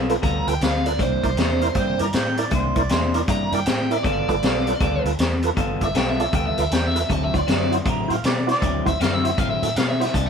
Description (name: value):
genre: electric blues shuffle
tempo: 157 BPM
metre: 4/4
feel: swing 64% on 8ths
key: G mixolydian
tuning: A4 = 440 Hz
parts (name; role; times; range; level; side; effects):
- electric guitar through a small old amp; riff; 0.0-10.3 s; C3 to A4; -27 LUFS; left 4 dB; none
- vintage muted fingered electric bass; bass; 0.0-10.3 s; G1 to B2; -26 LUFS; equal; none
- tonewheel organ; accompaniment; 0.1-10.1 s; E4 to E5; -27 LUFS; right 4 dB; slow rotary speaker, overdrive, chorus vibrato
- vintage drum kit; drums; 0.1-10.3 s; hi-hat, kick drum, snare drum; -23 LUFS; left 1 dB; none
- biting lead guitar; melody; 0.2-10.3 s; C5 to Bb5; -25 LUFS; right 2 dB; overdrive
- mellow harmonica; second line; 1.8-3.2, 7.9-8.8 s; G4 to Bb5; -27 LUFS; right 3 dB; none
room: light reverb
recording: band playing live in one room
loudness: -19 LUFS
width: side -6 dB against mid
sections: 0.0-10.3 A section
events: none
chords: 0.0 G9; 1.0 C9; 4.0 G9; 7.1 D9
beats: 0.23 0.61 | 0.99 1.38 1.76 2.14 | 2.52 2.90 3.28 3.66 | 4.04 4.42 4.81 5.19 | 5.57 5.95 6.33 6.71 | 7.09 7.47 7.86 8.24 | 8.62 9.00 9.38 9.76 | 10.14